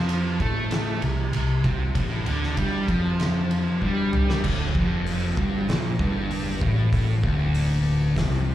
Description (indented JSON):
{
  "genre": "stoner and doom metal",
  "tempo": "97 BPM",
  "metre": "4/4",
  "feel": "straight",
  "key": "D minor from 4.4 s",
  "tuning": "A4 = 440 Hz",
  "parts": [
    { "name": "thick fuzz guitar", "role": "riff", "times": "0.0-8.5 s", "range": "D2 to A3", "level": "-27 LUFS", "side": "left 5 dB", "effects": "distortion" },
    { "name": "thick fuzz guitar", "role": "riff", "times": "0.0-8.5 s", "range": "D2 to A3", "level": "-26 LUFS", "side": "right 4 dB", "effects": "distortion" },
    { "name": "mellow fretless electric bass", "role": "bass", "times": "0.0-8.5 s", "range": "D1 to A2", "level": "-28 LUFS", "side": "equal", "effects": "overdrive" },
    { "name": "oversized low-tuned drum kit", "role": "drums", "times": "0.1-8.3 s", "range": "crash cymbal, hi-hat, kick drum, ride cymbal, snare drum, toms", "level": "-27 LUFS", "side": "equal", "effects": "none" }
  ],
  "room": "small room reverb",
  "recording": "live gig heard through the venue's PA, club reverb",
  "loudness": "-21 LUFS",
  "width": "side -13 dB against mid",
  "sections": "0.0-4.4 A section; 4.4-8.5 B section",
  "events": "drum fill 3.8-4.4",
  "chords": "0.0 C5; 4.4 Dm",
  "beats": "0.09 0.71 1.34 | 1.96 2.58 3.20 3.82 | 4.44 5.07 5.68 6.30 | 6.92 7.54 8.16"
}